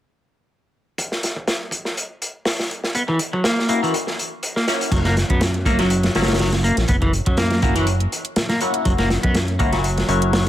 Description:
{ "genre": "breakbeat, breaks", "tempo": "122 BPM", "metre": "4/4", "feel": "swing 54% on 16ths", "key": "unclear", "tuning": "A4 = 435 Hz", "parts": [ { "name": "crunchy breakbeat drum kit", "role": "drums", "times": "1.0-10.5 s", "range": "crash cymbal, hi-hat, kick drum, snare drum", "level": "-21 LUFS", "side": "equal", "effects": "high-pass filter on kick, high-pass filter on hats, high-pass filter on cymbals, high-pass filter on snare, high-pass filter on room" }, { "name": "clean electric guitar", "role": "riff", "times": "3.0-10.4 s", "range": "E3 to B3", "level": "-22 LUFS", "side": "equal", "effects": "vintage 12-bit sampler grit, tape echo" }, { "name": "band-passed chord stab", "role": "stabs", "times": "3.7-10.5 s", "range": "A#3 to F#4", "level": "-25 LUFS", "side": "left 3 dB", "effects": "phaser, tape echo" }, { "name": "fat analog bass", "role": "bass", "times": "4.9-10.5 s", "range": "F#1 to F#2", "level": "-21 LUFS", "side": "equal", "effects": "none" }, { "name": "electronic hi-hat", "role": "drums", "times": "4.9-10.5 s", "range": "none", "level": "-31 LUFS", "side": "right 2 dB", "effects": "overdrive" } ], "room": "small room ambience", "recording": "none", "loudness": "-18 LUFS", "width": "side -12 dB against mid", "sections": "1.0-4.9 A section; 4.9-10.5 B section", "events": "break 3.9-4.9", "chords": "1.0 F#7" }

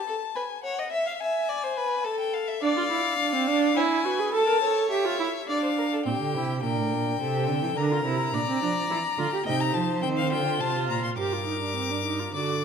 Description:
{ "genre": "classical, baroque-style fugue for string quartet", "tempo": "105 BPM", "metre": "3/4", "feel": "straight", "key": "D minor, G minor from 9.5 s", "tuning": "A4 = 441 Hz", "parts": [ { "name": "rich violin", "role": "melody", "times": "0.0-12.6 s", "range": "E5 to D6", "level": "-29 LUFS", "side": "left 8 dB", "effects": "none" }, { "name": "warm violin", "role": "second line", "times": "0.1-12.6 s", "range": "G4 to F5", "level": "-31 LUFS", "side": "left 2 dB", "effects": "none" }, { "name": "rich viola", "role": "accompaniment", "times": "2.6-12.6 s", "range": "C4 to Bb4", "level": "-27 LUFS", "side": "right 4 dB", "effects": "none" }, { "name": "warm cello", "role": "bass", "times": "6.1-12.6 s", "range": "G2 to F3", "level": "-29 LUFS", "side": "right 4 dB", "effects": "none" } ], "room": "wet recital hall reverb, RT60 1.9 s", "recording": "none", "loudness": "-24 LUFS", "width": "side -6 dB against mid", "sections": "0.0-6.1 A section; 6.1-12.6 B section", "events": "none", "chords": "0.4 B (rootless); 0.9 E; 2.1 A5; 2.6 Dm; 3.8 E; 4.3 A7; 5.5 Dm; 6.1 C7/Bb; 7.2 C69; 7.8 Bb; 8.9 Edim; 9.5 Cm; 11.2 Gm" }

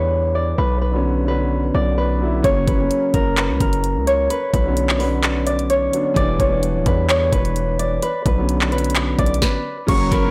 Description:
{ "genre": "hip hop, trap", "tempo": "129 BPM", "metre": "4/4", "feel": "half-time", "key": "B harmonic minor", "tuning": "A4 = 440 Hz", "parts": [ { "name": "Celtic harp", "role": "melody", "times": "0.0-10.3 s", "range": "A#4 to C#6", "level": "-24 LUFS", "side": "equal", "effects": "low-pass filter, digital delay" }, { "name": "dark concert grand piano", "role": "accompaniment", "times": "0.0-10.3 s", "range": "C#3 to E4", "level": "-26 LUFS", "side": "equal", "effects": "low-pass filter" }, { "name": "distorted 808-style bass", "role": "bass", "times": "0.0-10.3 s", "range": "D1 to E2", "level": "-24 LUFS", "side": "equal", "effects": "distortion" }, { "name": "trap drum kit", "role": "drums", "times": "2.4-10.2 s", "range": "crash cymbal, handclaps, hi-hat, kick drum, snare drum", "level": "-23 LUFS", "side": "equal", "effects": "none" }, { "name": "warm studio string section", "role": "sustained chords", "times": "9.9-10.3 s", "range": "F#3 to C#5", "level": "-27 LUFS", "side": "equal", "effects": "none" }, { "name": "breathy pan flute", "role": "second line", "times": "10.1-10.3 s", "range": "A#4", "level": "-26 LUFS", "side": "equal", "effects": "none" } ], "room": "light reverb, studio reverb", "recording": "blown-out, overdriven recording, overdrive", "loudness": "-19 LUFS", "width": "mono", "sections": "0.0-9.9 A section", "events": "stop 9.4-9.9", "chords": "0.0 Em7; 0.6 Bmadd9; 2.4 F#; 4.3 Bmadd9; 6.2 Em7; 8.0 Bmadd9" }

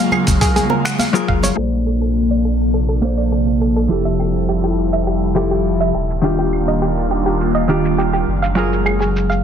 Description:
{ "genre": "sunset chillout", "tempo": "103 BPM", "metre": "4/4", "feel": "straight", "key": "Bb major", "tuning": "A4 = 440 Hz", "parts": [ { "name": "vintage hollow-body jazz guitar", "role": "accompaniment", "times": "0.0-9.4 s", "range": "Eb3 to D5", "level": "-19 LUFS", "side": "moving between left 5 dB and right 6 dB", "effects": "auto-pan, digital delay" }, { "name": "airy breathy pad", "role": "sustained chords", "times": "0.0-9.4 s", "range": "C3 to A4", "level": "-21 LUFS", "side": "left 1 dB", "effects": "chorus, phaser" }, { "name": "soft round pluck", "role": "arpeggios", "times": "0.0-9.4 s", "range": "G4 to Gb5", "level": "-23 LUFS", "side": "right 3 dB", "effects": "chorus, digital delay" }, { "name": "dusty soul sampler-style drum kit", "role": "drums", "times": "0.1-9.4 s", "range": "claves, finger snaps, hi-hat, shaker", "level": "-23 LUFS", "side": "right 2 dB", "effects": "low-pass filter on hats, small room ambience, soft clipping on snare, low-pass filter on snare, low-pass filter on perc" }, { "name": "congas", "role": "percussion", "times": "0.1-1.5 s", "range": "none", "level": "-24 LUFS", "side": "right 1 dB", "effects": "none" }, { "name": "warm sub bass", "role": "bass", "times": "0.3-9.4 s", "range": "Eb1 to Bb1", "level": "-20 LUFS", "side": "equal", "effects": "tube saturation" }, { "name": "electronic kick drum", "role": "drums", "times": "0.3-1.4 s", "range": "none", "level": "-18 LUFS", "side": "equal", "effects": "small room ambience" } ], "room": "moderate plate reverb, RT60 2.0 s", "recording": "dense, heavily limited modern master, low-pass filter", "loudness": "-14 LUFS", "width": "side -8 dB against mid", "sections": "0.0-1.6 A section; 1.6-9.4 B section", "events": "filter sweep on synth arpeggio sound 1.6-9.4; filter sweep 1.6-9.4", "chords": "0.0 Gbmaj9; 1.6 Bbmaj9; 3.9 Fmaj9; 5.9 Ebmaj9; 8.3 Gbmaj9" }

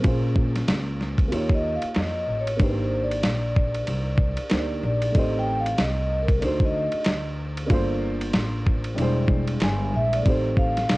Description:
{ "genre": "hip hop, jazz-hop", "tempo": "94 BPM", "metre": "4/4", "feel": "swing 60% on 16ths", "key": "unclear", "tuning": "A4 = 440 Hz", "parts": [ { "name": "vibraphone with soft mallets", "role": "melody", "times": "0.0-11.0 s", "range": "Bb4 to G#5", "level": "-28 LUFS", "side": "equal", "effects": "plate reverb" }, { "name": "dark concert grand piano", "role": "accompaniment", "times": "0.0-11.0 s", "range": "G3 to D5", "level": "-28 LUFS", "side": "equal", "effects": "cassette tape" }, { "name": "upright bass", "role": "bass", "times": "0.0-11.0 s", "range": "E1 to F2", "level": "-27 LUFS", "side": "equal", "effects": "tube saturation" }, { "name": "dusty soul sampler-style drum kit", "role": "drums", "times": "0.0-11.0 s", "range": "hi-hat, kick drum, ride cymbal, snare drum", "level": "-25 LUFS", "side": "equal", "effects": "cassette tape" } ], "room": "light reverb", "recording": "home recording on cassette", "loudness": "-21 LUFS", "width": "side -21 dB against mid", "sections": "0.0-11.0 A section", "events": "vibraphone solo 0.0-11.0", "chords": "0.0 Bbm7; 1.3 Eb7; 2.6 Abmaj9#11; 5.1 Am7b5; 6.4 D7b9; 7.7 Gm11; 9.0 E7alt; 10.3 Am7b5" }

